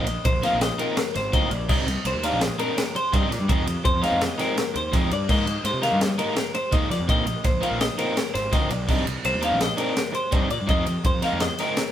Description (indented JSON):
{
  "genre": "math rock and midwest emo",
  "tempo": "167 BPM",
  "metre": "5/4",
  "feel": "straight",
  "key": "unclear",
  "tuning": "A4 = 440 Hz",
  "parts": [
    { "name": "twelve-string electric guitar", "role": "arpeggios", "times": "0.0-11.9 s", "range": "Bb4 to F5", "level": "-26 LUFS", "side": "left 2 dB", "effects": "none" },
    { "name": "crunchy overdriven guitar", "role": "riff", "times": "0.0-11.8 s", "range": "Eb3 to Eb4", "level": "-28 LUFS", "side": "right 1 dB", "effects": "none" },
    { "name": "fuzz picked electric bass", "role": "bass", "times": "0.0-11.5 s", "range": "Ab1 to F3", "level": "-28 LUFS", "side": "equal", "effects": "overdrive" },
    { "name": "crisp fusion drum kit", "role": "drums", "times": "0.1-11.9 s", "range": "crash cymbal, kick drum, ride cymbal, snare drum", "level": "-25 LUFS", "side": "equal", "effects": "none" }
  ],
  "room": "light reverb",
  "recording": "band playing live in one room",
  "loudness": "-21 LUFS",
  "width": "side -11 dB against mid",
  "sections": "0.0-11.9 A section",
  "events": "none",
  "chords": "0.0 Bbsus4; 1.7 Cm9; 3.5 Ab69; 7.1 Bbsus4; 8.9 Cm9; 10.7 Fm7"
}